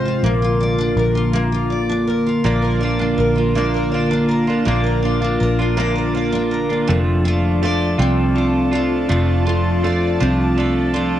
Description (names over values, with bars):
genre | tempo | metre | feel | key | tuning
six-eight pop ballad | 54 BPM (dotted quarters) | 6/8 | straight | F major from 6.9 s | A4 = 440 Hz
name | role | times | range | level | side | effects
picked steel-string acoustic guitar | accompaniment | 0.0-11.2 s | F3 to Eb5 | -19 LUFS | equal | double-tracked left and right, cassette tape
airy breathy pad | sustained chords | 0.0-11.2 s | C3 to A5 | -24 LUFS | left 2 dB | chorus, phaser, cassette tape
vintage muted fingered electric bass | bass | 0.0-11.2 s | F1 to C2 | -20 LUFS | equal | none
direct-recorded clean electric guitar | arpeggios | 2.4-11.2 s | F2 to F4 | -24 LUFS | right 4 dB | cassette tape
room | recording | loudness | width
moderate spring reverb, RT60 1.4 s, digital ambience | home recording on cassette | -15 LUFS | side -11 dB against mid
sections
0.0-2.5 A section; 2.5-6.9 B section; 6.9-11.2 C section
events
none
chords
0.2 Bb; 6.9 F6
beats
| 0.24 1.35 | 2.46 3.56 | 4.67 5.78 | 6.89 8.00 | 9.11 10.21